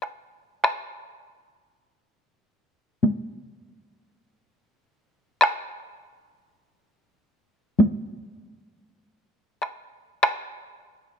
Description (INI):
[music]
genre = japanese traditional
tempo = free time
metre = none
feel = none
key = none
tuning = none
[part]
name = taiko ensemble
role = percussion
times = 0.0-10.5 s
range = none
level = -20 LUFS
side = left 1 dB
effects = none
[sound]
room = moderate recital hall reverb, RT60 1.6 s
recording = close, detailed microphones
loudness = -22 LUFS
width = side -6 dB against mid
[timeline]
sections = 0.0-11.2 A section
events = none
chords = none